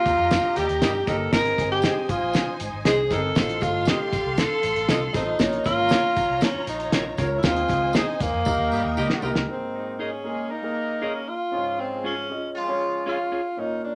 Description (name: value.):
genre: uptempo 1960s-style soul.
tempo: 118 BPM.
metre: 4/4.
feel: straight.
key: Ab major.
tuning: A4 = 440 Hz.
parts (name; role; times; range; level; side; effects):
breathy tenor saxophone; melody; 0.0-13.9 s; Bb3 to Bb4; -27 LUFS; equal; none.
clear studio string section; second line; 0.0-9.5 s; Eb4 to C6; -35 LUFS; equal; none.
warm grand piano; accompaniment; 0.0-13.9 s; Ab2 to Eb5; -32 LUFS; equal; none.
vintage muted fingered electric bass; bass; 0.1-9.4 s; G1 to G2; -34 LUFS; equal; none.
cloth-damped thuddy drum kit; drums; 0.1-9.5 s; hi-hat, kick drum, snare drum; -27 LUFS; equal; none.
tambourine; percussion; 0.1-9.3 s; none; -46 LUFS; equal; none.
warm horn section; second line; 0.6-1.2, 8.7-13.3 s; Bb2 to Bb4; -35 LUFS; equal; none.
clean electric guitar; stabs; 0.8-13.4 s; C4 to Eb5; -33 LUFS; equal; none.
room: wet club reverb, RT60 0.5 s.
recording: none.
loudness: -24 LUFS.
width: mono.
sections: 0.0-9.5 A section; 9.5-13.9 B section.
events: band accent 0.0-1.3, 7.4-9.5; drum fill 8.5-9.5.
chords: 0.0 Eb; 1.3 Ab; 3.4 F7; 5.4 Bbm; 7.4 Ab; 8.5 Eb; 9.5 Absus2; 11.5 Db/Ab.